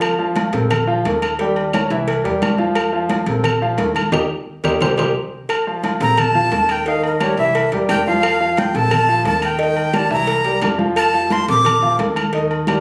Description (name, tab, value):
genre	latin, salsa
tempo	175 BPM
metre	4/4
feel	straight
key	F major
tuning	A4 = 438 Hz
part	warm grand piano	accompaniment	0.0-12.8 s	Eb3 to G5	-23 LUFS	equal	none
part	upright bass	bass	0.0-12.8 s	Bb1 to F2	-27 LUFS	equal	none
part	agogo bells and timbales	percussion	0.0-12.8 s	none	-26 LUFS	equal	none
part	claves	percussion	0.0-12.8 s	none	-31 LUFS	equal	none
part	congas	percussion	0.0-12.8 s	none	-28 LUFS	equal	none
part	cowbell	percussion	0.0-12.8 s	none	-28 LUFS	equal	none
part	breathy bright jazz flute	melody	6.0-12.0 s	Bb4 to D6	-20 LUFS	equal	none
room	moderate large studio reverb, RT60 0.9 s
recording	recorded on a phone in the room, club reverb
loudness	-18 LUFS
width	mono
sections	0.0-5.5 A section; 5.5-12.8 B section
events	drum fill 4.1-5.5; band accent 4.1-5.5; flute solo 5.5-12.8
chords	0.0 F; 0.7 Bb5; 1.4 Eb7; 2.1 C7; 2.8 F; 3.4 Bb5; 4.1 Eb; 4.8 C5; 5.5 F; 6.2 Bb5; 6.9 Eb; 7.5 C7; 8.2 F; 8.9 Bb5; 9.6 Eb; 10.3 C7; 11.0 F; 11.7 Bbmaj7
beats	| 0.02 0.36 0.70 1.05 | 1.39 1.73 2.07 2.42 | 2.76 3.10 3.44 3.79 | 4.13 4.47 4.81 5.16 | 5.50 5.84 6.18 6.52 | 6.87 7.21 7.55 7.89 | 8.23 8.58 8.92 9.26 | 9.60 9.95 10.29 10.63 | 10.97 11.31 11.65 12.00 | 12.34 12.68